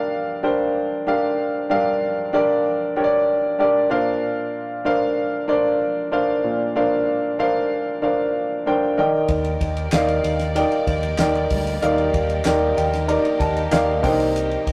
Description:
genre	piano-driven pop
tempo	95 BPM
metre	4/4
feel	straight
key	unclear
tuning	A4 = 440 Hz
part	warm baby grand piano	accompaniment	0.0-14.7 s	G2 to Bb5	-21 LUFS	equal	none
part	warm studio string section	sustained chords	9.3-14.7 s	Bb3 to D5	-33 LUFS	equal	none
part	modern bright picked electric bass	bass	9.3-14.7 s	C2 to Eb2	-28 LUFS	equal	none
part	damped 70s drum kit	drums	9.3-14.7 s	handclaps, hi-hat, kick drum, ride cymbal, snare drum	-29 LUFS	equal	none
room	moderate studio reverb, RT60 0.6 s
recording	rough rehearsal-room recording, tube saturation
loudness	-20 LUFS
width	mono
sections	0.0-14.7 A section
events	grand piano fill 12.5-14.3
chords	0.0 Gm7; 3.9 Bbadd9; 9.0 Ebmaj7; 14.0 Cm7

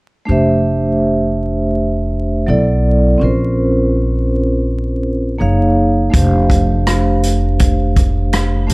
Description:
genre	hip hop, jazz-hop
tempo	82 BPM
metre	4/4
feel	swing 59% on 16ths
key	F major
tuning	A4 = 440 Hz
part	vibraphone with soft mallets	accompaniment	0.3-8.7 s	F#3 to F5	-15 LUFS	right 1 dB	none
part	upright bass	bass	0.3-8.7 s	F1 to B1	-16 LUFS	equal	none
part	vintage drum kit	drums	6.1-8.7 s	hi-hat, kick drum, rim click	-16 LUFS	equal	none
room	small room ambience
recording	vinyl crackle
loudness	-12 LUFS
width	side -25 dB against mid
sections	0.3-8.7 A section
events	none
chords	0.3 Fmaj9; 2.5 Bm; 3.2 Bbmadd9; 5.4 Gbmaj9; 6.1 Fadd9

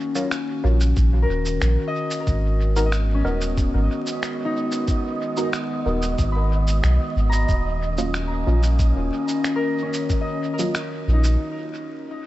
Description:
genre	ambient dub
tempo	92 BPM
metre	4/4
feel	straight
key	G# minor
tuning	A4 = 442 Hz
part	warbly tape-like pad	sustained chords	0.0-11.4 s	D#3 to F#4	-27 LUFS	left 1 dB	chorus, built-in reverb
part	concert harp	arpeggios	0.0-12.3 s	C#4 to B5	-30 LUFS	left 3 dB	tape echo
part	filtered dub chord stab	stabs	0.2-10.7 s	F#3 to A#4	-30 LUFS	right 1 dB	phaser, dub echo
part	electronic shaker and finger snaps	drums	0.2-11.4 s	none	-32 LUFS	right 1 dB	studio reverb, dub echo
part	soft dub sub bass	bass	0.6-11.4 s	D#1 to B1	-20 LUFS	equal	none
part	electronic kick drum	drums	1.0-10.2 s	none	-23 LUFS	equal	studio reverb
part	wind-like tuned noise texture	texture	2.9-11.4 s	D#5	-33 LUFS	right 4 dB	built-in reverb
room	digital ambience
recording	vinyl crackle, nothing above 7.9 kHz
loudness	-19 LUFS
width	side -16 dB against mid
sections	0.0-12.3 A section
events	break 11.4-12.3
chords	0.0 D#m7; 2.3 G#m7; 7.5 D#m7

